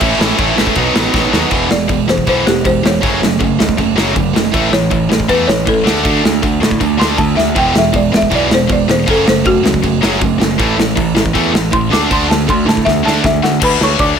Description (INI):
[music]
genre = punk rock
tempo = 159 BPM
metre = 4/4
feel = straight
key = A major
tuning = A4 = 440 Hz
[part]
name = distorted electric guitar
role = riff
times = 0.0-13.6 s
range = A2 to E4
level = -16 LUFS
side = right 13 dB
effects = overdrive
[part]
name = tight distorted guitar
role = riff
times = 0.0-14.2 s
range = E2 to D4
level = -18 LUFS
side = left 12 dB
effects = distortion
[part]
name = modern bright picked electric bass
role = bass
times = 0.0-14.1 s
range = E1 to A2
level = -20 LUFS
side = equal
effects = none
[part]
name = big rock drum kit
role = drums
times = 0.0-14.1 s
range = crash cymbal, kick drum, snare drum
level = -16 LUFS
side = equal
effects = none
[part]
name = folk marimba with hard mallets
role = melody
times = 1.7-14.2 s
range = F#4 to D6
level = -16 LUFS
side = left 1 dB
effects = none
[sound]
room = light reverb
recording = none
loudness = -10 LUFS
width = side -7 dB against mid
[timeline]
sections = 0.0-1.5 A section; 1.5-13.6 B section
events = drum fill 1.1-1.5, 7.4, 12.8-13.6; marimba solo 1.5-13.6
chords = 0.0 A; 0.8 B; 1.5 E; 3.0 F#m; 4.5 A; 5.9 D5; 7.6 E; 9.1 F#m; 10.6 A5; 11.9 D5